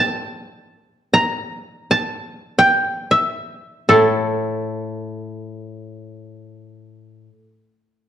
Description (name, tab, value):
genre	japanese traditional, Japanese chamber music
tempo	free time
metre	none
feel	none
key	unclear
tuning	A4 = 440 Hz
part	koto	melody	0.0-5.9 s	A4 to Bb5	-17 LUFS	right 1 dB	none
part	koto	accompaniment	3.9-7.3 s	A2	-21 LUFS	left 2 dB	none
room	moderate recital hall reverb, RT60 1.3 s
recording	dark, warm production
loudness	-16 LUFS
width	side -10 dB against mid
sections	0.0-7.0 A section; 7.0-8.1 A section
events	none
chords	none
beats	free time